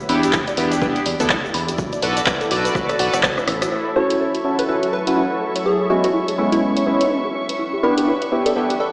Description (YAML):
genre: deep house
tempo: 124 BPM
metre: 4/4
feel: swing 59% on 16ths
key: F# minor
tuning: A4 = 440 Hz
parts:
  - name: warbly dusty pluck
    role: arpeggios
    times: 0.0-8.9 s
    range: E4 to B5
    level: -26 LUFS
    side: equal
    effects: chorus, sidechain pumping, tape echo
  - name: tube shaker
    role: percussion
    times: 0.0-3.7 s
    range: none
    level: -35 LUFS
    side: equal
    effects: none
  - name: granular cloud pad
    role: texture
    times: 0.0-8.9 s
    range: E3 to E5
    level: -26 LUFS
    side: equal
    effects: built-in reverb, sidechain pumping
  - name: chorused polysynth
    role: stabs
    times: 0.1-8.7 s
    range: G#3 to D5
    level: -20 LUFS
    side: equal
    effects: sidechain pumping, tape echo
  - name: round analog bass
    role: bass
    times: 0.1-3.7 s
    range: F#1 to E2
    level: -26 LUFS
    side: equal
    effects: sidechain pumping
  - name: punchy analog drum machine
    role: drums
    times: 0.1-8.8 s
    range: handclaps, hi-hat, rim click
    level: -22 LUFS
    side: equal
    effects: none
  - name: electronic kick drum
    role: drums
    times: 0.3-3.3 s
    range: none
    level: -27 LUFS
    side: equal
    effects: none
  - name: muted studio violin section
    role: texture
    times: 3.7-8.9 s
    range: E5 to C#6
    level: -29 LUFS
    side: equal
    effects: sidechain pumping
  - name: plucky unison lead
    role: melody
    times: 4.0-8.9 s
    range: E4 to C#5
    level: -22 LUFS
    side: equal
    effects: digital delay
room: wet digital room reverb, RT60 1.2 s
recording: played on a big sound system in a bare room, large studio reverb, small speaker sound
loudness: -16 LUFS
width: side -28 dB against mid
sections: 0.0-3.7 A section; 3.7-8.9 B section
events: drum fill 2.8-3.7; band accent 3.6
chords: 0.0 Em7; 1.8 Bm7; 3.7 F#m7; 5.7 C#m7; 7.6 Em7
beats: 0.33 0.82 1.30 | 1.78 2.27 2.75 3.24 | 3.72 4.20 4.69 5.17 | 5.66 6.14 6.62 7.11 | 7.59 8.07 8.56